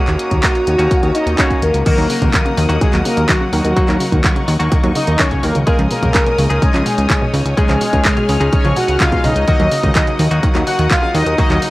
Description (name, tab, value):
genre	italo disco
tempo	126 BPM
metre	4/4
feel	straight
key	Eb minor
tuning	A4 = 441 Hz
part	analog synth brass	melody	0.0-11.7 s	Gb3 to Gb5	-18 LUFS	equal	chorus, analog delay
part	clear symphonic string section	sustained chords	0.0-11.7 s	Bb4 to F6	-26 LUFS	left 2 dB	none
part	direct-recorded clean electric guitar	stabs	0.0-11.7 s	Gb3 to Ab4	-23 LUFS	left 1 dB	none
part	fat analog bass	bass	0.1-11.6 s	Cb2 to Eb2	-17 LUFS	equal	none
part	house drum kit	drums	0.1-11.7 s	crash cymbal, handclaps, hi-hat	-21 LUFS	equal	none
part	electronic kick drum	drums	0.3-11.5 s	none	-16 LUFS	equal	none
part	wide unison pluck	arpeggios	1.9-11.7 s	Cb3 to Gb3	-21 LUFS	right 1 dB	tape echo
room	digital ambience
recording	dry, gritty hardware recording, vinyl crackle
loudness	-12 LUFS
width	side -18 dB against mid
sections	0.0-1.9 A section; 1.9-11.7 B section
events	none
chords	0.0 Ebm7; 5.7 Dbsus2; 9.5 Ebm